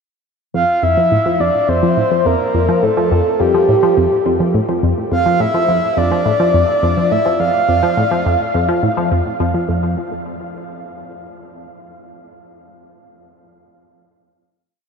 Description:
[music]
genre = ambient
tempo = 105 BPM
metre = 4/4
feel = straight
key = F major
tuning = A4 = 439 Hz
[part]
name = breathy flute-like synth lead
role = melody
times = 0.5-9.1 s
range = G4 to F5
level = -16 LUFS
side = equal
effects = wide subtle chorus, analog delay
[part]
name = tight sequenced synth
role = riff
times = 0.5-10.0 s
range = F2 to F3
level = -17 LUFS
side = equal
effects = chorus, analog delay
[sound]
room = wet huge ambient reverb, RT60 8.5 s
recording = none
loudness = -13 LUFS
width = side -5 dB against mid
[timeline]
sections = 0.5-9.7 A section; 9.7-12.0 final note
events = none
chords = 0.5 Fsus2; 9.7 N.C.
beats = | 0.54 1.11 1.69 2.26 | 2.83 3.40 3.97 4.54 | 5.12 5.69 6.26 6.83 | 7.40 7.97 8.54 9.12 | 9.69

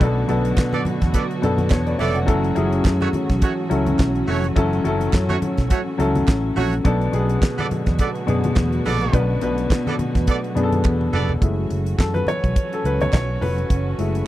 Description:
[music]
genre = disco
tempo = 105 BPM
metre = 4/4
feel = swing 56% on 16ths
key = F# minor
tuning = A4 = 438 Hz
[part]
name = warm baby grand piano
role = accompaniment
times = 0.0-14.3 s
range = B2 to F#5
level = -22 LUFS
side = left 3 dB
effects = none
[part]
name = warm studio string section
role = sustained chords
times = 0.0-14.3 s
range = D3 to F#4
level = -28 LUFS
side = right 4 dB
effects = none
[part]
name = warm horn section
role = stabs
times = 0.0-11.3 s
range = A3 to D5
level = -24 LUFS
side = right 6 dB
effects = none
[part]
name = fingered electric bass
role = bass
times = 0.0-14.2 s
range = E#1 to B2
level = -23 LUFS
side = equal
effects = none
[part]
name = damped 70s drum kit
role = drums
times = 0.0-14.3 s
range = handclaps, hi-hat, kick drum, snare drum, toms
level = -19 LUFS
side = equal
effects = none
[part]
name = congas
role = percussion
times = 0.0-14.1 s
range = none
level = -30 LUFS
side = left 1 dB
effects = none
[part]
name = group handclap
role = percussion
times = 0.6-13.3 s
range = none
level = -35 LUFS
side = right 14 dB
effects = none
[sound]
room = little or no reverb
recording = dry, close 1970s-style studio recording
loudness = -18 LUFS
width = side -15 dB against mid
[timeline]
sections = 0.0-11.4 A section; 11.4-14.3 B section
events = drum fill 10.8-11.4; grand piano solo 11.4-14.3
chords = 0.0 Bm7; 2.3 F#m7; 6.8 Bm7; 11.4 F#m7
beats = | 0.00 0.57 1.14 1.71 | 2.28 2.85 3.42 3.99 | 4.56 5.13 5.70 6.28 | 6.85 7.42 7.99 8.56 | 9.13 9.70 10.27 10.85 | 11.42 11.99 12.56 13.13 | 13.70

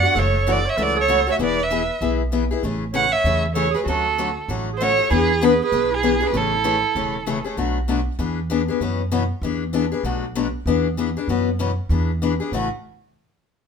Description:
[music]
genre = acoustic string swing (jazz manouche)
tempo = 194 BPM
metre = 4/4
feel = swing 60% on 8ths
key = A major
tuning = A4 = 436 Hz
[part]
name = warm violin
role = melody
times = 0.0-7.5 s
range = G#4 to F#5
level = -20 LUFS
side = right 4 dB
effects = none
[part]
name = clear clarinet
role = second line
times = 0.0-7.4 s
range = E4 to D5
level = -26 LUFS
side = right 9 dB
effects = none
[part]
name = picked acoustic archtop guitar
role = accompaniment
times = 0.0-12.7 s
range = A2 to G#4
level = -23 LUFS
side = left 6 dB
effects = none
[part]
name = upright bass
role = bass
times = 0.0-12.7 s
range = E1 to F#2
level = -25 LUFS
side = right 1 dB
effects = none
[sound]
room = moderate studio reverb, RT60 0.7 s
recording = minimal, uncompressed stereo recording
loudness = -18 LUFS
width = side -6 dB against mid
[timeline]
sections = 0.0-7.6 A section; 7.6-12.5 B section; 12.5-13.7 C section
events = none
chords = 0.2 F#m7; 1.4 E; 2.6 Amaj7; 3.9 Dmaj7; 5.1 E7; 6.3 Amaj7; 7.6 Bm7; 8.2 E7; 8.8 F#7sus4; 9.4 E7; 10.0 Bm7; 10.7 E7; 11.3 F#7sus4; 11.9 E7; 12.5 A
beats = | 0.16 0.47 0.78 1.09 | 1.40 1.70 2.01 2.32 | 2.63 2.94 3.25 3.56 | 3.86 4.17 4.48 4.79 | 5.10 5.41 5.72 6.03 | 6.33 6.64 6.95 7.26 | 7.57 7.88 8.19 8.50 | 8.81 9.12 9.43 9.73 | 10.04 10.35 10.66 10.97 | 11.28 11.59 11.90 12.21 | 12.52

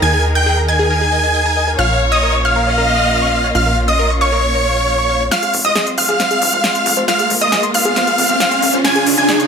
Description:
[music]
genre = uplifting trance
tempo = 136 BPM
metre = 4/4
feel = straight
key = F minor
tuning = A4 = 440 Hz
[part]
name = big supersaw lead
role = melody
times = 0.0-9.4 s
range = Db5 to Ab5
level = -15 LUFS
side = equal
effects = dub echo
[part]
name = wide unison pluck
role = second line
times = 0.0-9.4 s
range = Db6 to Ab6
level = -22 LUFS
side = right 1 dB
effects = dub echo
[part]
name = muted studio string section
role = sustained chords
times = 0.0-9.5 s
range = Db3 to Bb4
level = -23 LUFS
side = equal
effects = none
[part]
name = wide unison pluck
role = arpeggios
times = 0.0-9.5 s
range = Eb4 to Db6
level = -23 LUFS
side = left 1 dB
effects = vintage 12-bit sampler grit, dub echo
[part]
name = plucky analog bass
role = bass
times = 0.0-9.2 s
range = F1 to Eb2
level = -19 LUFS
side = equal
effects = high-pass filter
[part]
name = warm symphonic violin section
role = second line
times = 1.8-3.5 s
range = Db5 to Eb5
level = -22 LUFS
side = left 2 dB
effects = dub echo
[part]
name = big-room dance drum kit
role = drums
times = 5.3-9.5 s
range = hi-hat, snare drum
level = -18 LUFS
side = left 1 dB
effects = overdrive, high-pass filter on snare, high-pass filter on hats
[part]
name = riser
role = sound effects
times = 6.3-9.5 s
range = none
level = -19 LUFS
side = right 2 dB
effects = none
[sound]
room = moderate lush hall reverb, RT60 1.8 s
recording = none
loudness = -12 LUFS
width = side -6 dB against mid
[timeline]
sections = 0.0-5.3 A section; 5.3-9.5 B section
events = build-up 5.3-9.5; drum fill 5.3-9.5; riser 6.3-9.5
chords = 0.0 Ebsus4; 1.8 Bbm; 5.3 Fm; 8.8 Db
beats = | 0.02 0.46 0.91 1.35 | 1.79 2.23 2.67 3.11 | 3.55 3.99 4.43 4.88 | 5.32 5.76 6.20 6.64 | 7.08 7.52 7.96 8.40 | 8.85 9.29

